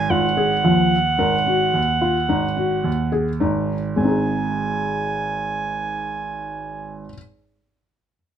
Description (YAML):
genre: contemporary instrumental, chamber music in an uneven meter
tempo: 109 BPM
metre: 7/4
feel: straight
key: Ab mixolydian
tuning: A4 = 440 Hz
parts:
  - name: bright clarinet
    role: melody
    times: 0.0-7.0 s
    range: Gb5 to Ab5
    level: -22 LUFS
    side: right 4 dB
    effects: none
  - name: warm concert grand piano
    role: bass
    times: 0.0-7.0 s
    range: Ab1 to Eb2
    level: -24 LUFS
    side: right 3 dB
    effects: none
  - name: felt-muted upright piano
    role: arpeggios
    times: 0.1-7.2 s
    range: F3 to Bb4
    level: -22 LUFS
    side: left 2 dB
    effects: none
room: light reverb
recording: close, detailed microphones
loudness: -18 LUFS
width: side -9 dB against mid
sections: 0.0-4.0 A section; 4.0-7.8 B section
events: slowing down 0.0-4.0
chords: 0.1 Ab5; 4.0 Ab